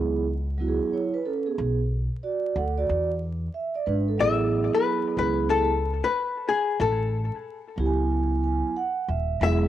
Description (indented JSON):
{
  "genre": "hip hop, jazz-hop",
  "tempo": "92 BPM",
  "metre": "4/4",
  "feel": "swing 65% on 16ths",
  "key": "A major",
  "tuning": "A4 = 440 Hz",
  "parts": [
    { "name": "vibraphone with soft mallets", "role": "accompaniment", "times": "0.0-9.7 s", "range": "F#3 to G#5", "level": "-26 LUFS", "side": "right 5 dB", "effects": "cassette tape" },
    { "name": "upright bass", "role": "bass", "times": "0.0-9.7 s", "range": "D#1 to E2", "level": "-26 LUFS", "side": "equal", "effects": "none" },
    { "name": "archtop guitar, miked and amplified", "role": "melody", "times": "4.2-9.7 s", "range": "G#4 to E5", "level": "-25 LUFS", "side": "left 6 dB", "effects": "tape echo" }
  ],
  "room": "moderate spring reverb, RT60 1.7 s, small room ambience",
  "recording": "home recording on cassette, vinyl crackle",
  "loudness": "-23 LUFS",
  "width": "side -12 dB against mid",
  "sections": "0.0-4.2 A section; 4.2-9.7 B section",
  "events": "vibraphone fill 8.1-9.4",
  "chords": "0.0 Amaj9; 1.6 Bm; 2.9 E9; 4.2 Amaj9",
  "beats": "0.28 0.93 | 1.58 2.24 2.89 3.54 | 4.19 4.84 5.50 6.15 | 6.80 7.45 8.11 8.76 | 9.41"
}